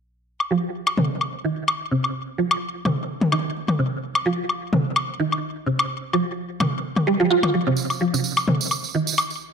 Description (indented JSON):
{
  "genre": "minimal techno",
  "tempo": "128 BPM",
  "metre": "4/4",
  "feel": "swing 55% on 16ths",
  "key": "unclear",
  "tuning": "A4 = 440 Hz",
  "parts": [
    { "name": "electronic woodblock and toms", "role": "percussion", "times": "0.4-9.3 s", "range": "none", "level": "-23 LUFS", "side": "left 2 dB", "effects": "overdrive, digital delay" },
    { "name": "mallet-like synth pluck", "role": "riff", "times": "0.5-9.0 s", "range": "C3 to F4", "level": "-23 LUFS", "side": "right 2 dB", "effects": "ensemble chorus, digital delay" },
    { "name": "tambourine", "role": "percussion", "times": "7.8-9.4 s", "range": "none", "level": "-27 LUFS", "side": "right 8 dB", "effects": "none" }
  ],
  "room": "moderate digital room reverb, RT60 1.3 s, digital ambience",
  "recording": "faint mains hum",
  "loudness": "-20 LUFS",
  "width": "side -6 dB against mid",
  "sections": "0.3-9.5 A section",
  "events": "filter sweep on synth arpeggio sound 0.3-9.5",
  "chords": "none"
}